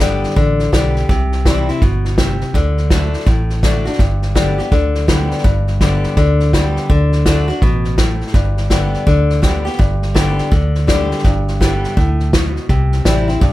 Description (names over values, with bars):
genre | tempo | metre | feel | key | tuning
honky-tonk and classic country | 166 BPM | 4/4 | swing 62% on 8ths | G major | A4 = 440 Hz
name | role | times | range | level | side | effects
picked steel-string acoustic guitar | accompaniment | 0.0-13.5 s | G2 to G4 | -18 LUFS | left 2 dB | none
vintage muted fingered electric bass | bass | 0.0-13.5 s | G1 to D2 | -17 LUFS | equal | none
unplugged drum kit | drums | 0.0-13.5 s | hi-hat, kick drum, snare drum | -16 LUFS | equal | none
room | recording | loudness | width
little or no reverb | none | -12 LUFS | side -16 dB against mid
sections
0.0-9.8 A section; 9.8-13.5 A section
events
none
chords
0.0 G; 1.1 C; 2.5 D; 4.0 G; 6.9 D; 8.3 G; 12.7 C